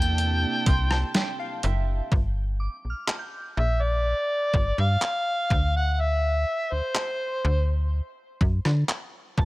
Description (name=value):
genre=contemporary R&B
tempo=62 BPM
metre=4/4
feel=straight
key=G dorian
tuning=A4 = 439 Hz
part: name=overdriven harmonica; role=melody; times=0.0-7.7 s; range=C5 to G5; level=-26 LUFS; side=equal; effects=tape echo
part: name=warm analog keys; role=accompaniment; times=0.0-2.1 s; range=C3 to C6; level=-34 LUFS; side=right 3 dB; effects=chorus
part: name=dark studio string section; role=sustained chords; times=0.0-2.1 s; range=C3 to A5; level=-34 LUFS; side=right 4 dB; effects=sidechain pumping
part: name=slap-like FM bass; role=bass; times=0.0-9.4 s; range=F#1 to D3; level=-24 LUFS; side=equal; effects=none
part: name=detuned 8-bit digital drum machine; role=drums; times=0.0-9.4 s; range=handclaps, hi-hat, kick drum, rim click, snare drum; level=-25 LUFS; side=equal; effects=none
part: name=soft synth bell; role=texture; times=2.6-9.4 s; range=A5 to G6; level=-41 LUFS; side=right 1 dB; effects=chorus, tape echo
room=digital ambience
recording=none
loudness=-23 LUFS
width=side -19 dB against mid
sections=0.0-2.1 A section; 2.1-9.4 B section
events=synth keys fill 0.2-2.1; hi-hats muted 2.1-9.4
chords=0.0 C13; 2.1 Gm7; 5.5 D7(no3)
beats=0.18 1.15 | 2.12 3.09 4.05 5.02 | 5.99 6.96 7.92 8.89